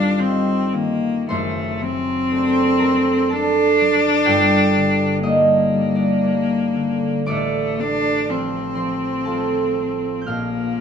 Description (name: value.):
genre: classical, romantic duo for cello and harp.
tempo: 60 BPM.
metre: 3/4.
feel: uneven beats, rubato.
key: G minor.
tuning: A4 = 440 Hz.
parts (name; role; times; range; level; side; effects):
clear cello; melody; 0.0-10.8 s; A3 to D4; -19 LUFS; left 2 dB; none.
concert harp; accompaniment; 0.0-10.8 s; F#1 to G6; -20 LUFS; right 2 dB; none.
room: moderate recital hall reverb, RT60 1.5 s.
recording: close, detailed microphones.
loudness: -16 LUFS.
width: side -7 dB against mid.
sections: 0.0-10.8 A section.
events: none.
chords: 0.0 Cm/G; 1.3 D7/F#; 4.3 Gm; 7.3 F/A; 10.3 Bb.